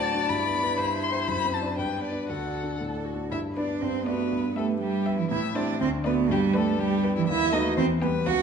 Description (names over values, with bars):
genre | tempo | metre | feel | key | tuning
quick classical-period movement for piano quartet | 121 BPM | 2/4 | straight | G major | A4 = 441 Hz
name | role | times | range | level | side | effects
warm violin | melody | 0.0-8.4 s | E4 to C6 | -30 LUFS | left 7 dB | none
rich violin | second line | 0.0-8.2 s | G4 to E5 | -36 LUFS | left 4 dB | none
warm cello | second line | 0.0-8.4 s | E3 to A4 | -27 LUFS | right 6 dB | none
clear grand piano | accompaniment | 0.0-8.4 s | C#2 to E5 | -29 LUFS | left 2 dB | none
room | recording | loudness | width
wet recital hall reverb, RT60 1.6 s | dark, warm production, nothing above 10.5 kHz | -24 LUFS | side -6 dB against mid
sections
0.0-3.3 A section; 3.3-8.4 B section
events
none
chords
0.3 G; 0.8 C/G; 1.3 D7/F#; 1.8 G; 2.3 D; 3.3 G; 3.8 D/G; 4.3 Em/G; 5.3 Am7; 5.8 D7; 6.3 G; 7.3 B7/D#; 7.8 Em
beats
| 0.29 0.79 | 1.28 1.78 | 2.29 2.80 | 3.31 3.82 | 4.32 4.81 | 5.31 5.80 | 6.30 6.79 | 7.28 7.77 | 8.26